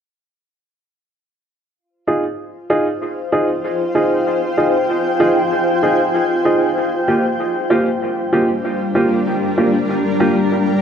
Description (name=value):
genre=ambient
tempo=96 BPM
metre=4/4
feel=swing 60% on 16ths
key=F minor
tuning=A4 = 437 Hz
part: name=granular cloud pad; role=sustained chords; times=2.9-10.8 s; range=G3 to Ab5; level=-17 LUFS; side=left 1 dB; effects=built-in reverb
part: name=clear upright piano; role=stabs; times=2.1-10.4 s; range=Bb3 to Ab4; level=-17 LUFS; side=right 1 dB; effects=low-pass filter, dub echo
room=wet echo chamber reverb, RT60 1.4 s, small room reverb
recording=none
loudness=-15 LUFS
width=side -7 dB against mid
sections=1.8-10.8 A section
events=none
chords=1.8 Fm7; 6.8 Gm7